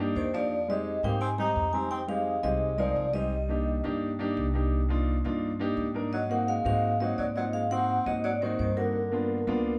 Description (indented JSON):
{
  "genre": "jazz",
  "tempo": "171 BPM",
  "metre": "4/4",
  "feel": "straight",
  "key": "C minor",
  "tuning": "A4 = 440 Hz",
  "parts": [
    { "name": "warm concert grand piano", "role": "accompaniment", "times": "0.0-9.7 s", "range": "Ab3 to Bb4", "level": "-33 LUFS", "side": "equal", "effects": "none" },
    { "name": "upright bass", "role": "bass", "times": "0.0-9.8 s", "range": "C2 to Ab2", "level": "-35 LUFS", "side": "equal", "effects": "none" },
    { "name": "vibraphone with medium mallets", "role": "melody", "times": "0.2-3.8, 6.1-9.8 s", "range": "Bb4 to Bb5", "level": "-32 LUFS", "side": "equal", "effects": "none" },
    { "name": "mellow tenor saxophone", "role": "second line", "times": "0.2-3.8, 6.1-9.8 s", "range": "D3 to Eb4", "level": "-37 LUFS", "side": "equal", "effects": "none" }
  ],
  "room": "moderate large studio reverb, RT60 0.8 s",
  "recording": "band playing live in one room",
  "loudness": "-29 LUFS",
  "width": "mono",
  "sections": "0.0-9.8 A section",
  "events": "none",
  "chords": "0.0 Cm7; 0.5 Fm7; 3.3 Cm7; 6.1 Ab7; 8.9 G7#9"
}